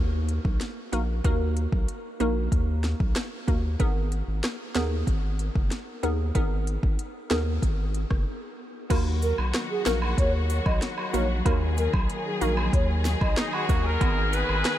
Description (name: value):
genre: dancehall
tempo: 94 BPM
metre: 4/4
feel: straight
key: Eb minor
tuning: A4 = 438 Hz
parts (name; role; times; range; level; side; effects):
- saturated sub bass; bass; 0.0-14.6 s; Gb1 to Eb2; -27 LUFS; equal; none
- afro-pop drum kit; drums; 0.3-14.8 s; crash cymbal, hi-hat, kick drum, rim click, snare drum; -27 LUFS; equal; none
- glassy wavetable pluck; accompaniment; 0.9-14.8 s; Bb3 to Bb4; -32 LUFS; right 1 dB; chorus, sidechain pumping
- rich studio string section; sustained chords; 8.9-14.8 s; Eb3 to Ab4; -32 LUFS; left 2 dB; sidechain pumping
- woodblock and cabasa; percussion; 8.9-14.6 s; none; -36 LUFS; right 1 dB; none
- hollow clarinet-like synth lead; melody; 9.2-13.3 s; Ab4 to Eb5; -32 LUFS; equal; chorus, diffuse ambient delay
- clear horn section; second line; 13.4-14.8 s; Eb4 to Cb5; -27 LUFS; equal; diffuse ambient delay
room: light reverb, digital ambience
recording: none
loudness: -23 LUFS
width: side -12 dB against mid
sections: 0.0-8.9 A section; 8.9-14.8 B section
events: break 8.3-8.9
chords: 0.0 Ebm; 3.8 Abmadd9; 8.9 Ebm; 14.0 Abmadd9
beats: 0.61 | 1.25 1.88 2.52 3.16 | 3.80 4.44 5.08 5.71 | 6.35 6.99 7.63 8.27 | 8.90 9.54 10.18 10.82 | 11.46 12.10 12.73 13.37 | 14.01 14.65